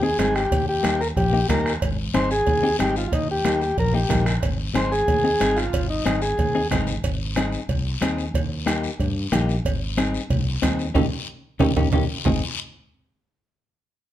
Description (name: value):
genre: latin, cumbia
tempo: 184 BPM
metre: 4/4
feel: straight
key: Ab major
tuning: A4 = 439 Hz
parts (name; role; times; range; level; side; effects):
- combo organ; melody; 0.0-6.7 s; Eb4 to C5; -22 LUFS; equal; none
- clean electric guitar; accompaniment; 0.0-12.4 s; Bb3 to Bb4; -25 LUFS; left 4 dB; none
- fingered electric bass; bass; 0.0-12.4 s; Ab1 to G2; -26 LUFS; equal; none
- bombo; percussion; 0.2-12.3 s; none; -26 LUFS; right 1 dB; none
- congas; percussion; 0.2-12.3 s; none; -31 LUFS; right 4 dB; none
- cowbell and timbales; percussion; 0.2-12.3 s; none; -31 LUFS; right 7 dB; none
- guiro; percussion; 0.2-12.3 s; none; -35 LUFS; left 6 dB; none
room: light reverb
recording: minimal, uncompressed stereo recording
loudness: -20 LUFS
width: side -12 dB against mid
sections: 0.0-7.0 A section; 7.0-12.3 B section; 12.3-13.6 C section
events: band accent 11.0-12.3; drum fill 11.3-12.3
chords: 0.0 Ab; 0.5 Eb; 1.8 Ab; 3.1 Eb; 4.4 Ab; 8.3 Eb; 9.6 Ab; 11.0 Eb7; 12.3 Ab